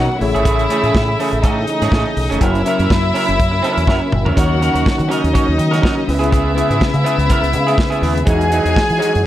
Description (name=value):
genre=disco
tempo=123 BPM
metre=4/4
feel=swing 56% on 16ths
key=unclear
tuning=A4 = 444 Hz
part: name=warm studio string section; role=second line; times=0.0-9.3 s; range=D#4 to G#5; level=-20 LUFS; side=left 1 dB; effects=none
part: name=electric guitar through a small old amp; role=accompaniment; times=0.0-9.3 s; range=F#3 to C#5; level=-21 LUFS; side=right 4 dB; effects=none
part: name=tine electric piano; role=accompaniment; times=0.0-9.3 s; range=B2 to C#5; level=-22 LUFS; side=left 2 dB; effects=medium stereo tremolo
part: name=percussive tonewheel organ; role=sustained chords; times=0.0-9.3 s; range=C#3 to A#4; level=-24 LUFS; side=equal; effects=chorus vibrato, fast rotary speaker
part: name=fingered electric bass with an envelope filter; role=bass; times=0.0-9.2 s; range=E#1 to E3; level=-19 LUFS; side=equal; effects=none
part: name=warm soul drum kit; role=drums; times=0.2-9.2 s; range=hi-hat, kick drum, snare drum, toms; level=-18 LUFS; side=equal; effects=none
room=light reverb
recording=none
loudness=-13 LUFS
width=side -13 dB against mid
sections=0.0-4.4 A section; 4.4-9.3 B section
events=drum fill 3.9-4.4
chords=0.2 Amaj7; 2.4 F#7; 4.4 D#m7; 6.1 C#m7; 8.3 Emaj9